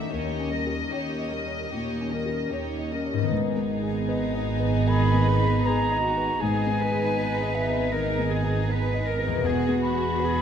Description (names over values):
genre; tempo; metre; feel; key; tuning
cinematic, emotional film score for orchestra; 77 BPM; 4/4; uneven beats, rubato; G# minor from 3.3 s; A4 = 441 Hz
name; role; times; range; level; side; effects
rich studio violin section; melody; 0.0-10.4 s; G#4 to E5; -36 LUFS; left 4 dB; none
dark studio violin section; second line; 0.0-10.4 s; D#4 to D#5; -34 LUFS; left 3 dB; none
dark studio viola section; accompaniment; 0.0-10.4 s; G3 to D#4; -33 LUFS; right 2 dB; none
warm concert grand piano; accompaniment; 0.0-10.4 s; D#2 to E5; -30 LUFS; left 1 dB; none
concert harp; arpeggios; 0.0-10.4 s; E2 to G#4; -32 LUFS; left 8 dB; none
warm studio cello section; bass; 0.1-10.4 s; D#2 to B4; -32 LUFS; right 1 dB; none
warm studio double bass section; bass; 3.3-10.4 s; E1 to G#1; -27 LUFS; right 3 dB; none
concert flute; second line; 4.1-10.4 s; D#5 to B5; -29 LUFS; equal; none
room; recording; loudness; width
wet scoring stage reverb, RT60 1.7 s; none; -23 LUFS; side -8 dB against mid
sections
0.0-3.3 A section; 3.3-10.4 A section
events
none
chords
0.1 D#7; 3.3 G#m; 9.4 Eadd9